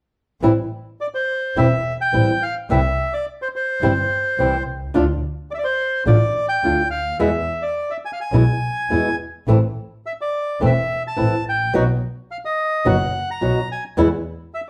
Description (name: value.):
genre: tango.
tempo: 106 BPM.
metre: 4/4.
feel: rubato.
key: A minor.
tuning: A4 = 440 Hz.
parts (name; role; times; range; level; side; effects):
flamenco guitar; accompaniment; 0.4-14.1 s; B2 to F#4; -22 LUFS; equal; none.
dark double bass; bass; 0.4-14.2 s; E1 to E2; -23 LUFS; equal; none.
bandoneon; melody; 1.0-14.6 s; C5 to Bb5; -24 LUFS; equal; none.
room: wet studio reverb, RT60 0.8 s.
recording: band playing live in one room.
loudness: -20 LUFS.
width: mono.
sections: 0.4-14.7 A section.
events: none.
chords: 0.4 Am7; 2.7 C; 4.9 Dm; 7.2 E; 9.5 Am; 11.7 B; 14.0 E.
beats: | 0.42 0.99 1.56 2.12 | 2.69 3.26 3.82 4.38 | 4.94 5.50 6.07 6.63 | 7.20 7.76 8.33 8.90 | 9.47 10.04 10.61 11.17 | 11.74 12.30 12.86 13.42 | 13.98 14.54.